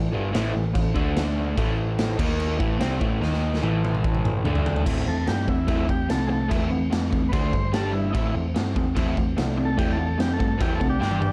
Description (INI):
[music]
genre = garage rock duo or trio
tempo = 146 BPM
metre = 4/4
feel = straight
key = A minor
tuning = A4 = 439 Hz
[part]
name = combo organ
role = sustained chords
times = 0.0-11.3 s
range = D4 to C6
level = -39 LUFS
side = equal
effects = none
[part]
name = crunchy overdriven guitar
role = riff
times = 0.0-11.3 s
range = G2 to G4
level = -28 LUFS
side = equal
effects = none
[part]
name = hollow-body short-scale picked electric bass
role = bass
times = 0.0-11.3 s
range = G1 to G2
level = -30 LUFS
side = equal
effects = none
[part]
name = raw garage drum kit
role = drums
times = 0.3-11.3 s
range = crash cymbal, kick drum, snare drum, toms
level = -28 LUFS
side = equal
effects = none
[part]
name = overdriven combo organ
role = melody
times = 5.1-11.3 s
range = D4 to C5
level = -33 LUFS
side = equal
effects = none
[sound]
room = light reverb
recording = none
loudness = -24 LUFS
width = mono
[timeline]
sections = 0.0-4.9 A section; 4.9-11.3 B section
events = drum fill 3.2-4.9, 11.0-11.3; transistor combo organ fill 3.6-4.9; transistor combo organ solo 4.9-11.3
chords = 0.0 Am; 1.0 D5; 1.6 Am; 2.2 D#5; 2.6 Am; 3.2 D#5; 3.6 Am; 4.5 D5; 4.9 Am; 7.3 D5; 7.7 G5; 8.1 Am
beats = 0.35 0.76 1.17 | 1.58 1.99 2.40 2.81 | 3.22 3.63 4.04 4.45 | 4.86 5.27 5.68 6.09 | 6.50 6.92 7.33 7.74 | 8.15 8.56 8.97 9.38 | 9.79 10.20 10.61 11.02